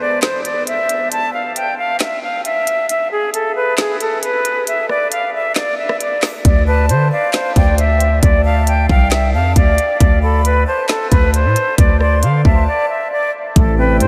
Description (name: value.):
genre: hip hop, trap.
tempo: 135 BPM.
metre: 4/4.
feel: half-time.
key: unclear.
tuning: A4 = 442 Hz.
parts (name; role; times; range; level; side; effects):
silver concert flute; melody; 0.0-14.1 s; G#4 to A5; -19 LUFS; equal; delay.
trap drum kit; drums; 0.2-14.1 s; handclaps, hi-hat, kick drum, rim click, snare drum; -19 LUFS; equal; none.
hard-hitting 808-style bass; bass; 6.4-14.1 s; A1 to D3; -16 LUFS; equal; none.
breathy jazz flute; second line; 6.7-14.1 s; F5 to C6; -27 LUFS; equal; delay.
felt-muted upright piano; accompaniment; 13.6-14.1 s; A2 to C3; -29 LUFS; equal; none.
dark analog pad; sustained chords; 13.6-14.1 s; A3 to C5; -23 LUFS; equal; chorus.
room: wet huge ambient reverb, RT60 7.7 s.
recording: dreamy mix soaked in reverb.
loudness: -15 LUFS.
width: mono.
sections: 0.0-13.6 A section.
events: break 0.0-6.4, 12.7-13.6.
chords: 0.0 N.C.; 6.4 D5; 13.6 Am7.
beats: 0.23 0.67 | 1.12 1.56 2.00 2.45 | 2.89 3.34 3.78 4.23 | 4.67 5.12 5.56 6.00 | 6.45 6.89 7.34 7.78 | 8.23 8.67 9.12 9.56 | 10.01 10.45 10.89 11.34 | 11.78 12.23 12.67 13.12 | 13.56 14.01.